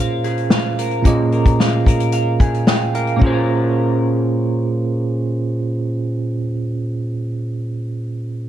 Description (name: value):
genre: indie pop, bedroom pop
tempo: 111 BPM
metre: 4/4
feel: straight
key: Bb minor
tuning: A4 = 438 Hz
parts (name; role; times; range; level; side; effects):
- bell-like tine electric piano; accompaniment; 0.0-8.5 s; Bb2 to Ab5; -18 LUFS; right 2 dB; fast stereo tremolo
- electric guitar through a small old amp; accompaniment; 0.0-6.8 s; Bb3 to F5; -24 LUFS; left 2 dB; wide subtle chorus, vibrato effect
- unplugged drum kit; drums; 0.2-3.3 s; hi-hat, kick drum, snare drum; -16 LUFS; left 1 dB; none
room: little or no reverb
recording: none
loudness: -16 LUFS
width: side -11 dB against mid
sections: 0.0-3.2 A section; 3.2-7.5 B section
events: tine electric piano fill 2.1-3.2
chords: 0.0 Bbm7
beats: 0.51 | 1.05 1.59 2.13 2.67 | 3.21 3.75 4.30 4.84 | 5.38 5.92 6.46 7.00